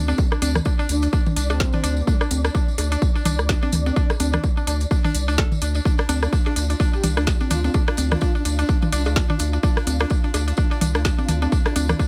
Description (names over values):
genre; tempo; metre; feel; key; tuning
minimal techno; 127 BPM; 4/4; swing 58% on 16ths; D minor; A4 = 439 Hz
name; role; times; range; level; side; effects
mallet-like synth pluck; riff; 0.0-12.1 s; D4 to A4; -31 LUFS; equal; chorus, sidechain pumping, delay
saturated sub bass; bass; 0.0-11.9 s; C2 to D2; -24 LUFS; equal; sidechain pumping
flickering grainy texture; texture; 0.0-12.1 s; D4 to D5; -36 LUFS; equal; built-in reverb, sidechain pumping
garage drum kit; percussion; 0.1-12.0 s; congas, cowbell, rim click, toms; -27 LUFS; equal; delay
tambourine; percussion; 0.1-12.1 s; none; -36 LUFS; equal; none
electronic kick drum; drums; 0.2-12.1 s; none; -22 LUFS; equal; overdrive
garage drum kit; drums; 0.4-11.9 s; hi-hat, snare drum; -29 LUFS; equal; overdrive
breathy flute-like synth lead; melody; 0.9-2.2, 6.9-8.3 s; C4 to G4; -32 LUFS; equal; lush chorus, delay
room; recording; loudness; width
light reverb; none; -21 LUFS; mono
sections
0.0-12.1 A section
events
none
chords
0.0 Dm